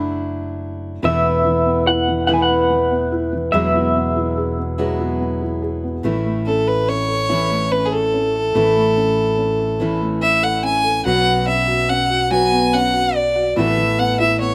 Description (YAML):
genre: acoustic folk duo or small band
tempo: 48 BPM (dotted quarters)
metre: 6/8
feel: straight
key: A major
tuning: A4 = 440 Hz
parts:
  - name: electric guitar through a small old amp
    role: melody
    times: 0.0-5.2 s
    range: E5 to G#5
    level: -22 LUFS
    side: equal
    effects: tremolo
  - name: picked steel-string acoustic guitar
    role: accompaniment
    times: 0.0-14.5 s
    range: E2 to A4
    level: -25 LUFS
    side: equal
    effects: none
  - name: fingered electric bass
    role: bass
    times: 0.0-14.5 s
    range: E1 to B1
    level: -28 LUFS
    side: equal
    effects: none
  - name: felt-muted upright piano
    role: arpeggios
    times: 1.0-14.5 s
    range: E3 to A4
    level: -25 LUFS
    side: equal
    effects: none
  - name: clear fiddle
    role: second line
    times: 6.5-14.5 s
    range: G#4 to G#5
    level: -20 LUFS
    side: equal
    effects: none
room: little or no reverb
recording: recorded outdoors, with no room sound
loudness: -18 LUFS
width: mono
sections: 0.0-6.0 A section; 6.0-14.5 B section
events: fiddle solo 6.0-14.5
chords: 0.0 Dadd9/F#; 1.0 Asus2/E; 3.5 Eadd9; 6.0 A; 11.1 Bsus2; 13.6 Asus2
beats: | 1.03 2.28 | 3.54 4.79 | 6.04 7.29 | 8.55 9.80 | 11.06 12.31 | 13.57